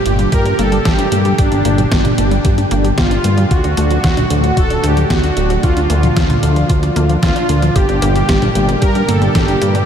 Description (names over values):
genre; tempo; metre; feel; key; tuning
synthwave; 113 BPM; 4/4; straight; G minor; A4 = 440 Hz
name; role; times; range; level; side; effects
soft supersaw; melody; 0.0-9.8 s; D4 to Bb4; -18 LUFS; equal; ping-pong delay
analog string pad; sustained chords; 0.0-9.9 s; A2 to G4; -20 LUFS; equal; ensemble chorus, sidechain pumping
wide unison pluck; arpeggios; 0.1-9.8 s; F3 to G4; -22 LUFS; left 1 dB; analog delay
fat analog bass; bass; 0.1-9.8 s; D1 to G2; -16 LUFS; equal; sidechain pumping
gated 80s digital drum machine; drums; 0.1-9.9 s; hi-hat, snare drum, toms; -20 LUFS; equal; gated reverb, gated reverb snare, overdrive
electronic kick drum; drums; 0.3-9.5 s; none; -16 LUFS; equal; overdrive
room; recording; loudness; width
moderate huge ambient reverb, RT60 7.3 s; dreamy mix soaked in reverb; -11 LUFS; side -8 dB against mid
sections
0.0-9.9 A section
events
none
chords
0.0 Gm; 3.5 D; 5.6 Bb/D; 7.8 Gm